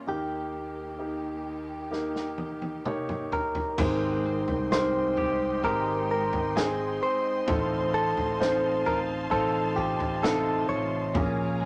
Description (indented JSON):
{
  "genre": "pop ballad",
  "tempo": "65 BPM",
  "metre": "4/4",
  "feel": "straight",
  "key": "Ab major",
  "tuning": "A4 = 439 Hz",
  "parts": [
    { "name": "direct-recorded clean electric guitar", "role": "melody", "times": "0.0-11.7 s", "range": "G4 to Db5", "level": "-32 LUFS", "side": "equal", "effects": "none" },
    { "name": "warm concert grand piano", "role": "accompaniment", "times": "0.0-11.7 s", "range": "Eb2 to G5", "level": "-32 LUFS", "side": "equal", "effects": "none" },
    { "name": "clear studio string section", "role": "sustained chords", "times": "0.0-11.7 s", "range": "Eb2 to C6", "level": "-40 LUFS", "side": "equal", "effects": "none" },
    { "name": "natural country drum kit", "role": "drums", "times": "1.9-11.4 s", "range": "crash cymbal, kick drum, snare drum, toms", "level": "-35 LUFS", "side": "equal", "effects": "none" },
    { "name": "twelve-string electric guitar", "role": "arpeggios", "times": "3.8-11.7 s", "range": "Bb2 to G4", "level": "-40 LUFS", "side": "equal", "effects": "none" },
    { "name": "mellow fretless electric bass", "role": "bass", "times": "3.8-11.7 s", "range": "Ab1 to C2", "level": "-37 LUFS", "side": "equal", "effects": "none" }
  ],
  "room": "wet studio reverb, RT60 0.6 s",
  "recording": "none",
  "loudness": "-28 LUFS",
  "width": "mono",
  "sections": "0.0-3.8 A section; 3.8-11.7 B section",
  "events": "drum fill 1.9-3.8",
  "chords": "0.1 Eb; 3.8 Abmaj7; 7.5 F7/A; 11.1 Bbm7"
}